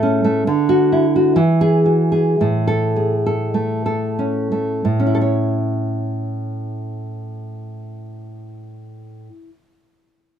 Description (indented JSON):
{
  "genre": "romantic piece for solo classical guitar",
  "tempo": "45-70 BPM",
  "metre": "2/4",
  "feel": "rubato",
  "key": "A major",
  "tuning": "A4 = 440 Hz",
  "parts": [
    { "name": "nylon-string guitar", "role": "solo", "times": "0.0-9.6 s", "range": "A2 to C#5", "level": "-17 LUFS", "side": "equal", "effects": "none" }
  ],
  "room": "light reverb",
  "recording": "dry, close 1970s-style studio recording",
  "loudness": "-16 LUFS",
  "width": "side -9 dB against mid",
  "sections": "0.0-4.8 A section; 4.8-9.8 B section",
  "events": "slowing down 0.0-4.8",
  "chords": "0.5 Dadd9; 1.4 E; 2.4 A"
}